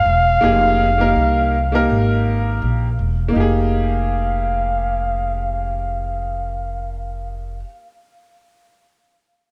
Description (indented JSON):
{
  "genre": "hip hop",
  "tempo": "82 BPM",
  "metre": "4/4",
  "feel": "swing 58% on 16ths",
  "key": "F minor",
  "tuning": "A4 = 440 Hz",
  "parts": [
    { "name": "breathy flugelhorn", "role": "melody", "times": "0.0-7.0 s", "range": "F5", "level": "-22 LUFS", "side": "equal", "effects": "tape echo" },
    { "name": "upright bass", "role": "bass", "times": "0.0-7.6 s", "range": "E1 to C2", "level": "-23 LUFS", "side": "equal", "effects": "none" },
    { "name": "clear upright piano", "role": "accompaniment", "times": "0.4-7.7 s", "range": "Bb3 to Bb4", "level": "-24 LUFS", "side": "equal", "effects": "none" }
  ],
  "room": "moderate plate reverb, RT60 3.1 s",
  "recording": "dreamy mix soaked in reverb",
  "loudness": "-18 LUFS",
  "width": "mono",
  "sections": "0.0-3.3 A section; 3.3-6.3 B section",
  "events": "none",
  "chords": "0.0 Fm11"
}